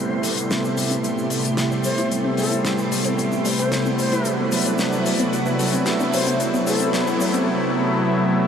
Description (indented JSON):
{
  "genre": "nu-disco, nu disco",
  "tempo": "112 BPM",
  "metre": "4/4",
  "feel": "straight",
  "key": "A dorian",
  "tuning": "A4 = 444 Hz",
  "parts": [
    { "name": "warm analog pad", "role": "accompaniment", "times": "0.0-8.5 s", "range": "C3 to E4", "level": "-21 LUFS", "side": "equal", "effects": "chorus, diffuse ambient delay" },
    { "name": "string machine, full ensemble", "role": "sustained chords", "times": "0.0-7.4 s", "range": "A3 to C6", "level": "-29 LUFS", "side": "equal", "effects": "ensemble chorus" },
    { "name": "analog pluck", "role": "arpeggios", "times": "0.0-7.5 s", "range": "F#3 to G4", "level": "-28 LUFS", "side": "left 2 dB", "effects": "none" },
    { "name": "damped 70s drum kit", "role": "drums", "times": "0.2-7.4 s", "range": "hi-hat, shaker, snare drum", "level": "-27 LUFS", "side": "left 2 dB", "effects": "high-pass filter on hats, high-pass filter on snare, high-pass filter on perc, high-pass filter on room" },
    { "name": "breathy mellow jazz flute", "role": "melody", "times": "1.8-7.5 s", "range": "A4 to C5", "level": "-29 LUFS", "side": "left 1 dB", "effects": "diffuse ambient delay" }
  ],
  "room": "wet huge ambient reverb, RT60 8.9 s",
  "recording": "dreamy mix soaked in reverb",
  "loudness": "-18 LUFS",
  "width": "side -8 dB against mid",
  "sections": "0.0-8.5 A section",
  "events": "build-up 0.0-8.5",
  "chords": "0.0 Am7; 4.3 D13"
}